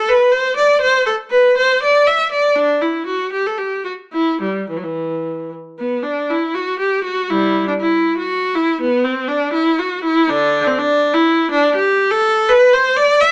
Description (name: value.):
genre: classical, baroque-style suite movement for unaccompanied viola.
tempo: 106-126 BPM.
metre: 3/4.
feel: rubato.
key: E minor.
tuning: A4 = 438 Hz.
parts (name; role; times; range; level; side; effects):
rich viola; solo; 0.0-13.3 s; D3 to E5; -16 LUFS; equal; none.
room: moderate studio reverb, RT60 0.8 s.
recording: none.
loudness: -16 LUFS.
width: mono.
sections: 0.0-5.8 A section; 5.8-13.3 B section.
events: none.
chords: none.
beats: 0.09 0.57 | 1.06 1.57 2.07 | 2.56 3.06 3.58 | 4.12 4.68 5.24 | 5.78 6.29 6.79 | 7.29 7.80 8.30 | 8.79 9.29 9.79 | 10.29 10.78 11.26 | 11.74 12.23 12.72 | 13.21.